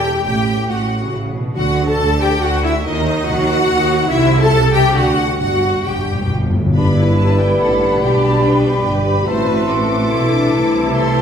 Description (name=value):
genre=quick classical-period movement for symphony orchestra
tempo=131-147 BPM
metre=3/4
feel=rubato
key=G major from 4.1 s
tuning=A4 = 442 Hz
part: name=rich studio violin section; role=melody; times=0.0-11.2 s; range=Eb5 to D6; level=-26 LUFS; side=left 4 dB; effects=none
part: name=clear studio violin section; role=second line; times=0.0-11.2 s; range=G4 to A5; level=-23 LUFS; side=left 2 dB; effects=none
part: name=rich studio viola section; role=accompaniment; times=0.0-11.2 s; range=D4 to A4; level=-19 LUFS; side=equal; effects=none
part: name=rich studio cello section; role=bass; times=0.0-11.2 s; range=E2 to Eb3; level=-21 LUFS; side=right 1 dB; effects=none
part: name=rich studio double bass section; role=bass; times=0.0-11.2 s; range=E1 to Eb2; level=-21 LUFS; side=right 2 dB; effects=none
part: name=timpani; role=percussion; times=1.6-2.2, 5.4-6.7 s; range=G2 to D3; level=-20 LUFS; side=left 1 dB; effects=none
part: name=flute section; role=second line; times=6.8-11.2 s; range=A5 to C6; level=-23 LUFS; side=right 2 dB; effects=none
part: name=mellow clarinet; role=second line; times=6.8-11.2 s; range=D5 to E5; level=-25 LUFS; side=left 2 dB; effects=none
part: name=dark bassoon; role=accompaniment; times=6.8-11.2 s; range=E3 to G3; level=-22 LUFS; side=left 1 dB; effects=none
part: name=mellow French horn section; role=sustained chords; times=6.8-11.2 s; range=A3 to B4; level=-20 LUFS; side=left 1 dB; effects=none
room=wet recital hall reverb, RT60 1.6 s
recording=recorded in a church or concert hall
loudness=-13 LUFS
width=side -8 dB against mid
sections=0.0-6.8 A section; 6.8-11.2 B section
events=timpani fill 5.4-6.8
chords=0.3 A7; 1.1 A; 1.6 Dadd9; 2.9 Ebm; 4.1 C6; 5.0 D; 5.4 G; 8.0 G/B; 9.3 Am; 10.5 Am/C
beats=| 0.25 0.69 1.13 | 1.56 2.00 2.43 | 2.85 3.27 3.69 | 4.11 4.52 4.95 | 5.40 5.86 6.30 | 6.75 7.18 7.61 | 8.03 8.44 8.85 | 9.27 9.69 10.11 | 10.53 10.94